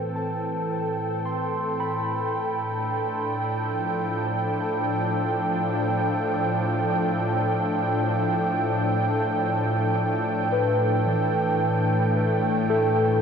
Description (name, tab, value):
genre	ambient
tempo	55 BPM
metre	4/4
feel	straight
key	unclear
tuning	A4 = 440 Hz
part	warm analog pad	sustained chords	0.0-13.2 s	A2 to G5	-23 LUFS	equal	chorus
part	muted felt-like synth keys	arpeggios	0.0-13.2 s	E3 to C6	-29 LUFS	left 1 dB	chorus, analog delay
room	wet plate reverb, RT60 2.6 s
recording	dreamy mix soaked in reverb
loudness	-22 LUFS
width	side -7 dB against mid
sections	0.0-13.2 A section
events	fade-in on analog synth pad 0.0-13.2; fade-in on synth keys 0.0-13.2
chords	0.0 Am7; 2.3 G7/A; 11.1 A7(no3)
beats	0.16 1.25 | 2.34 3.43 4.52 5.61 | 6.70 7.79 8.88 9.97 | 11.07 12.16